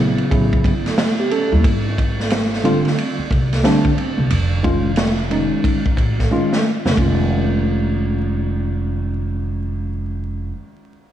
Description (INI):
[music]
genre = hip hop, jazz-hop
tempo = 90 BPM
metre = 4/4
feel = swing 64% on 16ths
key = unclear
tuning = A4 = 440 Hz
[part]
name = mellow tine electric piano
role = accompaniment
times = 0.0-10.5 s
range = Db3 to A4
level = -20 LUFS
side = equal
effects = medium stereo tremolo, slapback echo
[part]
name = upright bass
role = bass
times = 0.0-10.5 s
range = F1 to Eb2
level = -20 LUFS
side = right 1 dB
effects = none
[part]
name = vintage drum kit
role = drums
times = 0.2-7.2 s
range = hi-hat, kick drum, ride cymbal, snare drum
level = -20 LUFS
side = equal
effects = none
[sound]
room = moderate concert hall reverb, RT60 2.5 s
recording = big arena sound, vinyl crackle, small room ambience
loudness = -16 LUFS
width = side -11 dB against mid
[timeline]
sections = 0.0-7.0 A section; 7.0-9.6 B section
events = drum fill 6.3-7.0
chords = 0.3 A9; 1.6 Ab; 4.3 Fm7b13; 7.0 Dbadd9/F